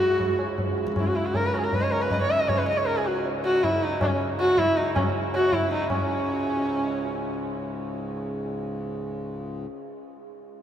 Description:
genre	indian classical, Hindustani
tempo	159 BPM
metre	4/4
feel	straight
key	C# raga bageshri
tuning	A4 = 440 Hz
part	warm sarangi	melody	0.0-7.4 s	C#4 to E5	-24 LUFS	equal	none
part	rich sarangi	second line	0.0-7.4 s	C#4 to E5	-35 LUFS	right 3 dB	none
part	pedal harmonium	drone	0.0-9.7 s	C#2 to G#2	-32 LUFS	equal	none
part	tabla	percussion	0.2-6.0 s	none	-29 LUFS	equal	none
room	wet huge ambient reverb, RT60 8.4 s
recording	in a vast, echoing space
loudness	-23 LUFS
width	side -10 dB against mid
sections	0.0-5.9 A section; 5.9-8.9 B section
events	speeding up 0.0-8.9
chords	none

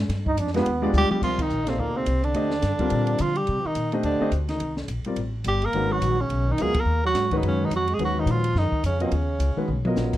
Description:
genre	modal jazz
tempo	213 BPM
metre	4/4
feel	swing 59% on 8ths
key	unclear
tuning	A4 = 440 Hz
part	upright bass	bass	0.0-10.2 s	G1 to D3	-26 LUFS	equal	none
part	compact cocktail drum kit	drums	0.1-10.2 s	crash cymbal, hi-hat, kick drum, ride cymbal, snare drum, toms	-32 LUFS	equal	none
part	warm trombone	second line	0.3-9.9 s	Bb2 to Eb4	-31 LUFS	right 4 dB	none
part	warm concert grand piano	accompaniment	0.5-10.2 s	Db3 to F5	-27 LUFS	left 2 dB	none
part	breathy tenor saxophone	melody	1.0-9.9 s	Bb3 to Bb4	-26 LUFS	right 1 dB	none
room	light reverb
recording	dark, warm production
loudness	-21 LUFS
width	side -14 dB against mid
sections	0.0-1.2 A section; 1.2-10.2 B section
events	trombone solo 0.0-1.2; drum fill 0.9, 9.7; band accent 1.4, 6.7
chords	0.1 G7b9; 1.2 Cm9; 5.7 Abm9

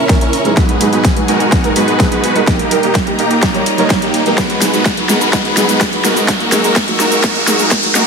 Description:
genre	EDM, festival progressive house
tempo	126 BPM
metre	4/4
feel	straight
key	G# minor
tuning	A4 = 440 Hz
part	rich studio string section	sustained chords	0.0-8.1 s	G4 to E6	-21 LUFS	left 3 dB	sidechain pumping
part	dense compressed supersaw	riff	0.0-8.1 s	G#3 to B4	-16 LUFS	right 1 dB	sidechain pumping, low-pass filter, ping-pong delay
part	wide detuned saw bass	bass	0.0-8.1 s	none	barely audible	none	none
part	riser	sound effects	0.2-8.1 s	none	-20 LUFS	equal	none
part	dark grand piano	accompaniment	0.1-8.0 s	G#2 to C#5	-18 LUFS	right 3 dB	sidechain pumping, ping-pong delay
part	big-room dance drum kit	drums	0.1-8.0 s	cabasa, hi-hat, snare drum	-17 LUFS	equal	overdrive, studio reverb
part	electronic kick drum	drums	0.1-7.8 s	none	-16 LUFS	equal	overdrive, studio reverb
room	moderate lush hall reverb, RT60 1.8 s, digital ambience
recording	high-pass filter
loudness	-10 LUFS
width	side -5 dB against mid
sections	0.0-8.1 A section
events	build-up 0.0-8.1; drum fill 0.0-8.1; filter sweep 0.0-8.1; riser 0.2-8.1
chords	0.0 A#dim; 0.6 G#m7; 2.5 D#; 4.4 G#m7; 6.3 A#dim

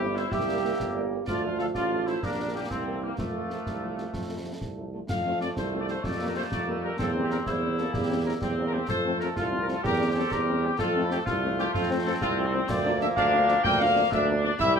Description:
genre	military-style march for wind band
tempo	126 BPM (dotted quarters)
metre	6/8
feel	straight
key	F major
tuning	A4 = 442 Hz
part	clear euphonium	second line	0.0-4.8 s	A3 to G4	-33 LUFS	right 4 dB	none
part	clear woodwind section	second line	0.0-14.8 s	A3 to A4	-32 LUFS	left 2 dB	none
part	warm French horn section	accompaniment	0.0-14.8 s	C3 to G4	-34 LUFS	left 4 dB	none
part	clear trombone section	sustained chords	0.0-14.8 s	E3 to C4	-35 LUFS	right 3 dB	none
part	warm tuba	bass	0.0-14.8 s	G1 to F2	-30 LUFS	right 3 dB	none
part	mellow trumpet section	melody	0.2-14.8 s	E4 to G5	-30 LUFS	left 2 dB	none
part	concert snare drum, concert bass drum and clash cymbals	drums	0.2-14.7 s	none	-36 LUFS	equal	none
room	moderate studio reverb, RT60 0.5 s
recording	minimal, uncompressed stereo recording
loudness	-24 LUFS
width	side -6 dB against mid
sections	0.0-5.1 A section; 5.1-14.8 A section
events	none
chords	0.3 C7; 1.3 Dm; 2.2 Gm/Bb; 2.7 C7; 3.2 F; 6.0 Gm7/F; 7.0 C7/E; 8.9 F; 9.8 C7/E; 10.8 F; 12.7 Bb/D

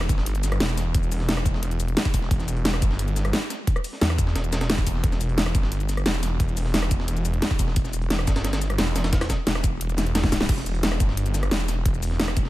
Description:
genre	dark technical drum and bass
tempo	176 BPM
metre	4/4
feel	straight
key	E minor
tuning	A4 = 439 Hz
part	snarling distorted saw bass	bass	0.0-12.5 s	E1 to E2	-25 LUFS	equal	distortion, overdrive
part	dubstep drum kit	drums	0.0-12.4 s	crash cymbal, hi-hat, rim click, shaker, snare drum	-27 LUFS	equal	none
part	breakbeat sampler-style drum kit	drums	0.1-12.5 s	hi-hat, snare drum	-33 LUFS	right 1 dB	high-pass filter on hats, high-pass filter on snare
part	electronic kick drum	drums	0.1-12.4 s	none	-23 LUFS	equal	overdrive
room	little or no reverb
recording	none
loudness	-21 LUFS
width	side -16 dB against mid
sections	0.0-12.5 A section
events	drum fill 10.0-10.5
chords	none

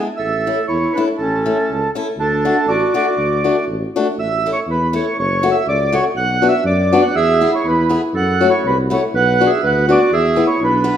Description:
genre	alpine folk, alpine dance band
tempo	121 BPM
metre	2/4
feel	straight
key	D major, A major from 4.2 s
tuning	A4 = 440 Hz
part	mellow accordion	melody	0.0-11.0 s	A4 to F#5	-18 LUFS	right 2 dB	none
part	clear clarinet	second line	0.0-3.7, 7.2-11.0 s	C#4 to B4	-19 LUFS	right 3 dB	none
part	picked old ladder-braced acoustic guitar	accompaniment	0.0-11.0 s	A3 to G#4	-19 LUFS	left 4 dB	none
part	dark tuba	bass	0.2-10.9 s	F#1 to F#2	-21 LUFS	equal	none
room	wet recital hall reverb, RT60 1.4 s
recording	minimal, uncompressed stereo recording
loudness	-14 LUFS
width	side -9 dB against mid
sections	0.0-4.2 A section; 4.2-11.0 B section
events	none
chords	0.2 A; 2.2 D; 4.2 A; 5.2 F#m; 6.2 Bm; 7.2 E; 8.1 F#m; 9.1 Bm; 10.1 E7

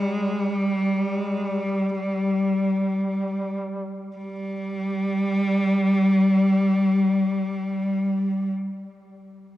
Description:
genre	caucasian folk, Caucasian lament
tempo	free time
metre	none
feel	none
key	unclear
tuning	A4 = 438 Hz
part	clear cello	melody	0.0-8.5 s	G3	-22 LUFS	equal	none
part	mellow duduk	drone	0.0-8.5 s	G3	-31 LUFS	left 1 dB	none
room	wet cathedral reverb, RT60 5.0 s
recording	worn, warbling old tape, cassette tape, warbly pitch drift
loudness	-21 LUFS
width	side -14 dB against mid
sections	0.0-4.1 A section; 4.1-9.2 B section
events	slowing down 0.0-4.1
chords	none

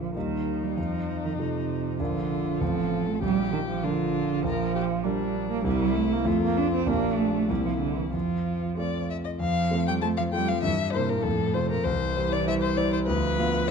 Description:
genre	quick classical-period movement for piano trio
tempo	98 BPM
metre	2/4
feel	straight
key	Bb major, F major from 4.4 s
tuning	A4 = 435 Hz
part	warm cello	second line	0.0-13.7 s	A2 to D4	-28 LUFS	right 8 dB	none
part	clear grand piano	accompaniment	0.0-13.7 s	A1 to F5	-28 LUFS	left 1 dB	none
part	warm violin	melody	0.1-13.7 s	D4 to A5	-30 LUFS	left 7 dB	none
room	moderate recital hall reverb, RT60 1.6 s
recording	dark, warm production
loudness	-24 LUFS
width	side -6 dB against mid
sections	0.0-9.4 A section; 9.4-13.7 B section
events	none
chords	0.1 Eb; 0.8 F7; 2.0 Bb; 2.6 F/A; 3.2 Bb; 4.4 Gm/Bb; 5.7 C7; 6.3 F; 6.9 Gm/Bb; 7.5 C7; 8.1 F; 10.6 Edim/G; 11.2 F; 11.9 C; 13.1 Bdim/D

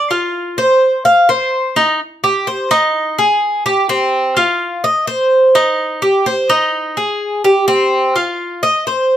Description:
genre	latin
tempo	127 BPM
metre	4/4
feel	straight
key	C minor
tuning	A4 = 440 Hz
part	Cuban tres	solo	0.0-9.2 s	C4 to F5	-12 LUFS	equal	none
room	moderate studio reverb, RT60 0.6 s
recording	none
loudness	-12 LUFS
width	side -11 dB against mid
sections	0.0-2.0 A section; 2.0-9.2 A section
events	none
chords	none

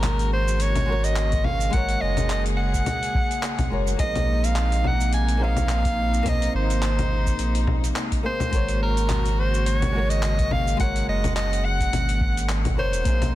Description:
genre	sunset chillout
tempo	106 BPM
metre	4/4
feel	swing 56% on 16ths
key	unclear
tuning	A4 = 440 Hz
part	bright soprano saxophone	melody	0.0-13.3 s	Bb4 to Ab5	-27 LUFS	equal	digital delay
part	flamenco guitar	accompaniment	0.0-13.3 s	Ab3 to Eb5	-32 LUFS	moving between left 6 dB and right 4 dB	auto-pan, ping-pong delay
part	warm chamber string section	sustained chords	0.0-13.3 s	C3 to Gb5	-31 LUFS	left 1 dB	none
part	warm sub bass	bass	0.0-13.3 s	Eb1 to Bb1	-24 LUFS	equal	tube saturation
part	dusty soul sampler-style drum kit	drums	0.0-13.3 s	cabasa, congas, handclaps, hi-hat	-29 LUFS	left 1 dB	none
part	electronic kick drum	drums	1.3-13.2 s	none	-26 LUFS	equal	overdrive
room	little or no reverb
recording	dense, heavily limited modern master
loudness	-20 LUFS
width	side -15 dB against mid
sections	0.0-13.3 A section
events	none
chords	0.0 Ab9sus4; 4.0 Bb9sus4; 8.5 Ab9sus4

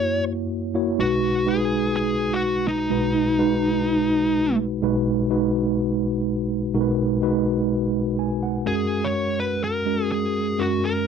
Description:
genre	pop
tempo	125 BPM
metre	4/4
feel	swing 55% on 16ths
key	B major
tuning	A4 = 440 Hz
part	fuzz lead guitar	melody	0.0-4.6, 8.7-11.1 s	D#4 to C#5	-23 LUFS	left 1 dB	distortion, slapback echo
part	mellow tine electric piano	accompaniment	0.0-11.1 s	B1 to G#5	-22 LUFS	right 1 dB	medium stereo tremolo
room	moderate booth ambience, RT60 0.2 s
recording	dry, close 1970s-style studio recording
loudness	-20 LUFS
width	side -7 dB against mid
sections	1.0-8.7 A section; 8.7-11.1 B section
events	none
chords	0.0 F#7; 1.0 B6; 8.7 F#add9

